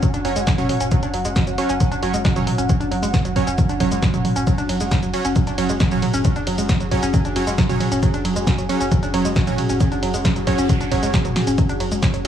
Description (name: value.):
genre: driving peak-time techno.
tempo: 135 BPM.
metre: 4/4.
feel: straight.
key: unclear.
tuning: A4 = 436 Hz.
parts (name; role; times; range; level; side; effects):
woody wave-folded pluck; riff; 0.0-12.3 s; F#3 to D4; -24 LUFS; right 1 dB; chorus, overdrive, sidechain pumping, tape echo.
saturated sub bass; bass; 0.0-12.2 s; F#1; -29 LUFS; equal; tube saturation, sidechain pumping, low-pass filter.
electronic kick drum; drums; 0.0-12.1 s; none; -20 LUFS; equal; none.
punchy analog drum machine; drums; 0.0-12.3 s; hi-hat, ride cymbal, shaker, snare drum, toms; -25 LUFS; equal; sidechain pumping on hats, sidechain pumping on perc, sidechain pumping on toms, sidechain pumping on cymbals.
warbly tape-like pad; texture; 0.0-12.3 s; C#4 to F#5; -27 LUFS; left 1 dB; chorus, built-in reverb, sidechain pumping.
supersaw stab; stabs; 0.2-12.3 s; F#3 to C#5; -26 LUFS; right 4 dB; sidechain pumping, tape echo.
noise sweep; sound effects; 10.3-11.6 s; none; -37 LUFS; right 3 dB; none.
room: digital ambience.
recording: small room ambience.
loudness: -17 LUFS.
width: side -10 dB against mid.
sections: 0.0-12.3 A section.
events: noise sweep 10.3-11.6; drum fill 11.4.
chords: 0.0 F#5.